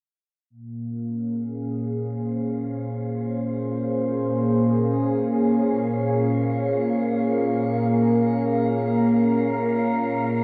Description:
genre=ambient, sequencer-driven space music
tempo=free time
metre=none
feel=none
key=Bb minor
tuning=A4 = 440 Hz
part: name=lush unison pad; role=sustained chords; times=0.5-10.4 s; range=Bb2 to C5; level=-23 LUFS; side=equal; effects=chorus, shimmer reverb
part: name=wind-like tuned noise texture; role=texture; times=1.9-10.4 s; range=F5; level=-37 LUFS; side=equal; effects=built-in reverb, shimmer reverb
room=wet plate reverb, RT60 3.5 s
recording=none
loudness=-23 LUFS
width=mono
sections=0.5-10.4 A section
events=fade-in on synth texture 0.5-10.4; filter sweep on analog synth pad 0.5-10.4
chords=0.5 Bbm7

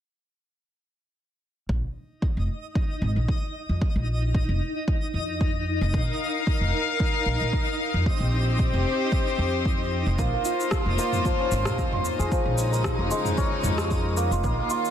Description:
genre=organic downtempo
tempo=113 BPM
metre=4/4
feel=swing 55% on 16ths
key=Bb dorian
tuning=A4 = 441 Hz
part: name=upright bass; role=bass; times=1.7-14.6 s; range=F1 to F2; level=-26 LUFS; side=equal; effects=sidechain pumping
part: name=electronic kick drum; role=drums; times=1.7-14.6 s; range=none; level=-26 LUFS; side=equal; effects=overdrive
part: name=twinkling granular texture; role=texture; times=2.4-14.9 s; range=Eb4 to Eb5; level=-33 LUFS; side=left 1 dB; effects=built-in reverb
part: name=rich chamber string section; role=sustained chords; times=5.9-14.9 s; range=Db3 to F5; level=-28 LUFS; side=left 3 dB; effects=sidechain pumping
part: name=santur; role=arpeggios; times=10.2-14.9 s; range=F3 to Bb4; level=-28 LUFS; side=equal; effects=low-pass filter, tape echo
part: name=deep house drum kit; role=drums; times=10.2-14.9 s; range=rim click, shaker, toms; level=-30 LUFS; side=equal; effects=overdrive
room=light reverb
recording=dense, heavily limited modern master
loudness=-22 LUFS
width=side -10 dB against mid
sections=1.7-10.2 A section; 10.2-14.9 B section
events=filter sweep on santur 10.2-14.9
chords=1.7 N.C.; 3.8 F7sus4; 8.1 Cm7; 10.2 Bbmadd9; 12.3 Dbadd9

